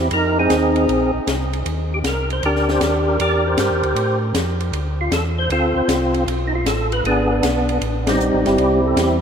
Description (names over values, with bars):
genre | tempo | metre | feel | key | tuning
soul jazz organ trio | 156 BPM | 4/4 | swing 67% on 8ths | F major | A4 = 439 Hz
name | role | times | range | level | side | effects
percussive tonewheel organ | melody | 0.0-9.2 s | G3 to D5 | -18 LUFS | equal | slow rotary speaker, chorus vibrato
mellow tonewheel organ | bass | 0.0-9.2 s | G1 to A2 | -22 LUFS | equal | slow rotary speaker
open jazz drum kit | drums | 0.1-9.1 s | hi-hat, ride cymbal, snare drum | -25 LUFS | left 2 dB | none
room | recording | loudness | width
wet cathedral reverb, RT60 5.0 s | in a vast, echoing space | -16 LUFS | side -7 dB against mid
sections
0.0-9.2 A section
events
band accent 8.0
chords
0.1 Fm7; 0.9 Bbsus2; 1.7 Ebmaj7; 3.2 Em7b5; 4.0 F; 4.7 Dm9; 6.3 B7(b5, no3); 7.0 G#dim; 7.8 Am7